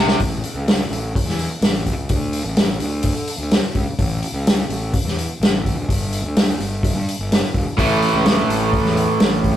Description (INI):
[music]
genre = classic rock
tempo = 127 BPM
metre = 4/4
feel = straight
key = A mixolydian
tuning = A4 = 440 Hz
[part]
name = overdriven semi-hollow guitar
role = riff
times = 0.0-0.2, 7.8-9.6 s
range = A2 to A3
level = -17 LUFS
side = right 1 dB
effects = none
[part]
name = fuzz fingered electric bass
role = bass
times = 0.0-9.6 s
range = E1 to D3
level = -24 LUFS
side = equal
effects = overdrive
[part]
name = vintage drum kit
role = drums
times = 0.1-9.5 s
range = hi-hat, kick drum, snare drum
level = -19 LUFS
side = equal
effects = none
[sound]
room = moderate studio reverb, RT60 0.5 s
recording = rough rehearsal-room recording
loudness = -17 LUFS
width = side -11 dB against mid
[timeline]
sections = 0.2-9.6 A section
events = drum fill 0.0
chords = 0.2 A; 2.1 D5; 4.0 A; 5.9 G5; 7.8 A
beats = | 0.19 0.67 1.14 1.61 | 2.09 2.56 3.04 3.51 | 3.98 4.46 4.93 5.40 | 5.88 6.35 6.82 7.30 | 7.77 8.24 8.72 9.19